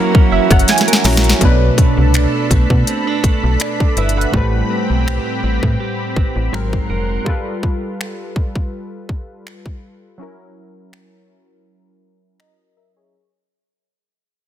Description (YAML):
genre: contemporary R&B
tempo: 82 BPM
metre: 4/4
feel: swing 54% on 16ths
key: unclear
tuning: A4 = 440 Hz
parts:
  - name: gliding portamento lead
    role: melody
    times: 0.0-0.7 s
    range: Bb5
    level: -30 LUFS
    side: left 3 dB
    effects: chorus, ping-pong delay
  - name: warm analog keys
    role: accompaniment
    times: 0.0-13.3 s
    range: G#2 to A#5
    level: -21 LUFS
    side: equal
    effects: chorus, low-pass filter
  - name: lush unison pad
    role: sustained chords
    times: 0.0-7.3 s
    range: E3 to B#5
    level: -24 LUFS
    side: equal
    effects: chorus, sidechain pumping, low-pass filter
  - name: direct-recorded clean electric guitar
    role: arpeggios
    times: 0.0-7.3 s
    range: B2 to A#4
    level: -22 LUFS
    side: right 8 dB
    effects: spring reverb, low-pass filter, ping-pong delay
  - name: trap drum kit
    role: drums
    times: 0.1-12.6 s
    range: finger snaps, hi-hat, kick drum, rim click, snare drum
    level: -15 LUFS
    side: equal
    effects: soft clipping on snare
  - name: slap-like FM bass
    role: bass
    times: 0.3-7.2 s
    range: F1 to B2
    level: -16 LUFS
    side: equal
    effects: none
  - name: synth chime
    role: texture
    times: 1.1-1.7 s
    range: C#5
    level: -31 LUFS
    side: left 2 dB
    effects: none
room: digital ambience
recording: dense, heavily limited modern master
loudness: -13 LUFS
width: side -11 dB against mid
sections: 0.0-1.4 A section; 1.4-13.1 B section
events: synth keys fill 0.0-1.4; drum fill 0.7-1.4; fade-out 1.4-13.1; filter sweep 1.4-13.1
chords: 0.0 F#7; 1.4 Bm7; 4.3 Am9; 6.5 G#9; 7.3 G9; 10.2 F#7